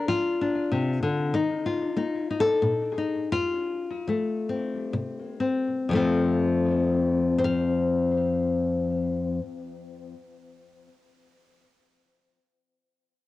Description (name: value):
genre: folk, solo fingerstyle acoustic guitar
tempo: 59-97 BPM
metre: 3/4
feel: rubato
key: F mixolydian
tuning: A4 = 438 Hz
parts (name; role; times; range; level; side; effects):
- nylon-string guitar; solo; 0.0-10.9 s; F2 to F5; -24 LUFS; left 3 dB; analog delay
room: light reverb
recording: home recording on cassette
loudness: -23 LUFS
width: side -15 dB against mid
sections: 0.0-5.9 A section; 5.9-11.8 B section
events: slowing down 1.3-5.9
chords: 0.0 Bbadd9 (rootless); 1.3 Ebsus2; 3.3 F